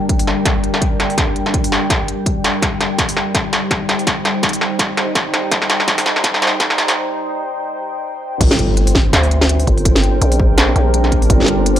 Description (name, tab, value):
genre	half-time drum and bass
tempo	166 BPM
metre	4/4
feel	swing 56% on 16ths, half-time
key	G minor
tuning	A4 = 439 Hz
part	deep dark ambient pad	sustained chords	0.0-11.8 s	G3 to A5	-21 LUFS	equal	chorus, built-in reverb, sidechain pumping
part	electronic kick drum	drums	0.1-11.4 s	none	-18 LUFS	equal	none
part	industrial drum kit	drums	0.1-11.8 s	crash cymbal, hi-hat, snare drum	-16 LUFS	equal	high-pass filter on snare, high-pass filter on hats, high-pass filter on cymbals, high-pass filter on room
part	growling 808-style bass	bass	8.4-11.8 s	G1 to D2	-15 LUFS	equal	none
part	impact	sound effects	8.4-9.9 s	none	-22 LUFS	equal	none
part	flickering grainy texture	texture	8.9-11.8 s	C4 to C5	-25 LUFS	right 1 dB	built-in reverb
room	light reverb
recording	dry, gritty hardware recording, high-pass filter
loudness	-13 LUFS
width	side -11 dB against mid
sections	0.0-8.4 A section; 8.4-11.8 B section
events	build-up 0.0-8.4; drum fill 0.0-7.0; filter sweep on ambient pad 0.0-8.4; filter sweep 0.0-8.4; break 7.0-8.4; drop 8.4-11.8; impact 8.4-9.9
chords	0.0 Gm; 2.6 Cm; 8.4 Gm